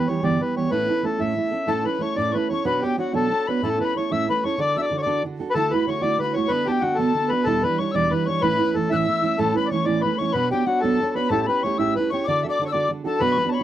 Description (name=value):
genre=celtic folk, Celtic jig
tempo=125 BPM (dotted quarters)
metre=6/8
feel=straight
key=D major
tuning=A4 = 440 Hz
part: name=accordion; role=melody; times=0.0-13.6 s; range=F#4 to E5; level=-23 LUFS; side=left 2 dB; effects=none
part: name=fingerpicked steel-string acoustic guitar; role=accompaniment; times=0.0-13.6 s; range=E2 to C#5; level=-23 LUFS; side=right 5 dB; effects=none
part: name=mellow tin whistle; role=second line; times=1.7-13.6 s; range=F#5 to F#6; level=-28 LUFS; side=left 10 dB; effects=none
room=little or no reverb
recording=dry, close 1970s-style studio recording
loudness=-20 LUFS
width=side -12 dB against mid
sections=0.0-5.5 A section; 5.5-13.2 A section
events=none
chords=0.0 G6; 0.7 A; 2.6 Bmadd9; 3.6 A; 4.6 D; 5.5 Dadd9; 6.5 Bm/D; 7.5 Em7; 8.4 A; 10.3 Bmadd9; 11.3 A7; 12.2 D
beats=0.23 | 0.71 1.20 | 1.68 2.16 | 2.65 3.13 | 3.61 4.10 | 4.58 5.06 | 5.54 6.02 | 6.50 6.98 | 7.46 7.94 | 8.42 8.90 | 9.38 9.86 | 10.33 10.81 | 11.29 11.77 | 12.24 12.72 | 13.20